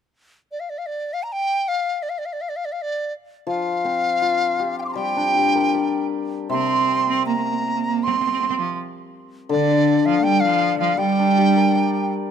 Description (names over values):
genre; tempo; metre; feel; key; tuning
chinese traditional, Chinese chamber ensemble; 80 BPM; 2/4; uneven beats, rubato; G yu mode; A4 = 441 Hz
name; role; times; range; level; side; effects
bright large dizi; melody; 0.5-12.1 s; D5 to D6; -21 LUFS; equal; none
hammered dulcimer; accompaniment; 3.5-12.3 s; C3 to D5; -23 LUFS; left 6 dB; none
rich cello; second line; 6.5-12.1 s; D3 to C4; -22 LUFS; right 8 dB; none
room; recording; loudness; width
light reverb; close, detailed microphones; -18 LUFS; side -8 dB against mid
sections
0.5-12.3 A section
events
none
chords
none